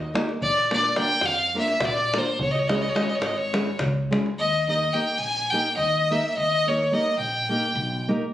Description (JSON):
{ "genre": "balkan folk, Balkan wedding band", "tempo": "212 BPM (eighths)", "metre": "7/8", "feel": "straight", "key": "unclear", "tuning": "A4 = 440 Hz", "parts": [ { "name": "clear violin", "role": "melody", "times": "0.0-8.1 s", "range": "B#4 to G#5", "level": "-23 LUFS", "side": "left 1 dB", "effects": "none" }, { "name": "upright bass", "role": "bass", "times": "0.0-8.1 s", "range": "G#1 to E#2", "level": "-31 LUFS", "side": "equal", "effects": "none" }, { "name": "nylon-string guitar", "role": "accompaniment", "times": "0.1-8.2 s", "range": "G#3 to A#4", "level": "-26 LUFS", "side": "equal", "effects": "none" }, { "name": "davul", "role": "percussion", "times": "0.2-4.3 s", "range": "none", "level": "-29 LUFS", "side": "left 1 dB", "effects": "none" } ], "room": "moderate studio reverb, RT60 0.6 s", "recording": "recorded on a phone in the room, studio reverb, compression", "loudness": "-21 LUFS", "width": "side -13 dB against mid", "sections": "0.0-4.4 A section; 4.4-8.3 A section", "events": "none", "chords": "0.4 A#; 2.4 C#m; 4.4 D#" }